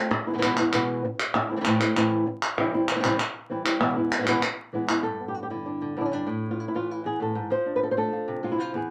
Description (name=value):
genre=flamenco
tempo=195 BPM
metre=4/4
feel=straight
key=E phrygian dominant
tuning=A4 = 442 Hz
part: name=flamenco guitar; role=melody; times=0.0-8.9 s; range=E2 to C5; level=-27 LUFS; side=equal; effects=none
part: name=palmas hand claps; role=percussion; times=0.1-5.0 s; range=none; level=-28 LUFS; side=equal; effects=none
room=moderate club reverb, RT60 0.5 s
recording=vinyl crackle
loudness=-26 LUFS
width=mono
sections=0.0-5.0 A section; 5.0-8.9 B section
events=none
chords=0.1 E; 1.3 Am; 2.6 C; 3.8 E; 5.0 G; 6.3 A5; 7.5 F6